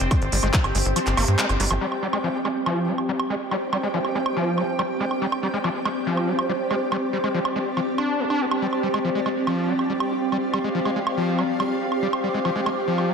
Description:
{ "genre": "psychedelic trance", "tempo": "141 BPM", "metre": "4/4", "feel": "straight", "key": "unclear", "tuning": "A4 = 440 Hz", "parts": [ { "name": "bubbling stepped-filter texture", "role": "sustained chords", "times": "0.0-13.1 s", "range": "C4 to C5", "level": "-26 LUFS", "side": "equal", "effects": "chorus, built-in reverb, sidechain pumping" }, { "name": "tight sequencer bass", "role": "bass", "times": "0.0-1.8 s", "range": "F1 to G2", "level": "-23 LUFS", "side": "equal", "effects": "none" }, { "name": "techno drum kit", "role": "drums", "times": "0.0-13.1 s", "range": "handclaps, hi-hat, woodblock", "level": "-29 LUFS", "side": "right 3 dB", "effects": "none" }, { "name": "granular cloud pad", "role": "texture", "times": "0.0-13.1 s", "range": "G4 to G5", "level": "-30 LUFS", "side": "right 1 dB", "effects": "built-in reverb, sidechain pumping" }, { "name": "screaming distorted acid line", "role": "riff", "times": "0.1-13.1 s", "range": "F3 to D4", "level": "-26 LUFS", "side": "equal", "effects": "distortion, chorus, auto-pan, sidechain pumping, diffuse ambient delay" }, { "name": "electronic kick drum", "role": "drums", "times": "0.1-0.6 s", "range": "none", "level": "-21 LUFS", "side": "equal", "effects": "none" } ], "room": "wet plate reverb, RT60 1.3 s, digital ambience", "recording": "dreamy mix soaked in reverb", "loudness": "-21 LUFS", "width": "side -6 dB against mid", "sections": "0.0-1.8 A section; 1.8-13.1 B section", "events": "drop 0.0-1.8; kick drops out 1.0-1.8", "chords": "0.0 G5", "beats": "| 0.11 0.54 0.96 1.39 | 1.81 2.24 2.66 3.09 | 3.51 3.94 4.37 4.79 | 5.22 5.64 6.07 6.49 | 6.92 7.34 7.77 8.20 | 8.62 9.05 9.47 9.90 | 10.32 10.75 11.17 11.60 | 12.03 12.45 12.88" }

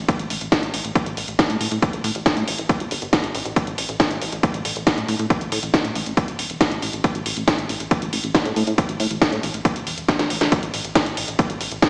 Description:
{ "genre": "psychedelic trance", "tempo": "138 BPM", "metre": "4/4", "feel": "straight", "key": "unclear", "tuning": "A4 = 441 Hz", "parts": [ { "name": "plucky analog bass", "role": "bass", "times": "0.0-11.8 s", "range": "E1 to A2", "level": "-26 LUFS", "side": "equal", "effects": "tube saturation" }, { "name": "electronic kick drum", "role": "drums", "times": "0.1-11.9 s", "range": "none", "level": "-18 LUFS", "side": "equal", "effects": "overdrive" }, { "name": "techno drum kit", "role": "drums", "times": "0.1-11.9 s", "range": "hi-hat, snare drum", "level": "-22 LUFS", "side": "equal", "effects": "none" } ], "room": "moderate digital room reverb, RT60 1.2 s", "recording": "played on a big sound system in a bare room, stone room reverb, small speaker sound", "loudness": "-19 LUFS", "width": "side -32 dB against mid", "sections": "0.0-10.5 A section; 10.5-11.9 B section", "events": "drum fill 10.1-10.5; drop 10.5-11.9", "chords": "none", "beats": "| 0.09 0.52 0.95 1.39 | 1.82 2.26 2.69 3.13 | 3.56 4.00 4.43 4.87 | 5.30 5.74 6.17 6.61 | 7.04 7.48 7.91 8.35 | 8.78 9.22 9.65 10.09 | 10.52 10.96 11.39 11.82" }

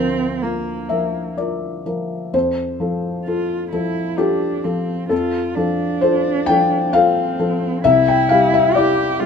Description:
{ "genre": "neoclassical piano and strings", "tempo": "65 BPM", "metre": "3/4", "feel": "rubato", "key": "F major", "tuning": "A4 = 439 Hz", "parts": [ { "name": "muted cello", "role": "second line", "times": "0.0-9.3 s", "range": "Bb3 to G4", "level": "-23 LUFS", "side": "right 5 dB", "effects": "none" }, { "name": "felt-muted upright piano", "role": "accompaniment", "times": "0.0-9.3 s", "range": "C2 to G5", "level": "-17 LUFS", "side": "left 3 dB", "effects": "none" } ], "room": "light reverb", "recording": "minimal, uncompressed stereo recording", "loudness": "-16 LUFS", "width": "side -6 dB against mid", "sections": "0.0-2.3 A section; 2.3-9.3 A section", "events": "none", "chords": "0.0 Bb/D; 2.3 F; 7.8 C", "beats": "0.43 1.38 | 2.33 3.27 4.19 | 5.11 6.02 6.93 | 7.84 8.75" }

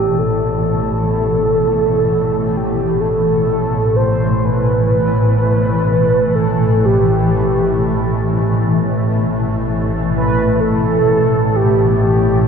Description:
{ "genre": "dark ambient drone", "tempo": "free time", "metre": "none", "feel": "none", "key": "unclear", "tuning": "A4 = 440 Hz", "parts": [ { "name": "mellow horn-like synth lead", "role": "melody", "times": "0.0-12.5 s", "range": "G4 to C5", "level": "-17 LUFS", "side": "right 1 dB", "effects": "chorus, diffuse ambient delay" }, { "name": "granular cloud pad", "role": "sustained chords", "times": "0.0-12.5 s", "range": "A2 to E3", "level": "-20 LUFS", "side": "equal", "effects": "built-in reverb" }, { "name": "tubular bells", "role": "arpeggios", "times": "0.0-12.5 s", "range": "D4 to A4", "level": "-32 LUFS", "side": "left 3 dB", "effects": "none" }, { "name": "organ-like drone", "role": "drone", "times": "0.0-12.5 s", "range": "A1 to A2", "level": "-17 LUFS", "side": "left 1 dB", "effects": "ensemble chorus, built-in reverb" } ], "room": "wet cathedral reverb, RT60 4.8 s", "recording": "in a vast, echoing space", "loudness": "-13 LUFS", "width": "side -6 dB against mid", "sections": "0.0-12.5 A section", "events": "none", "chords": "0.0 A5", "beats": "free time" }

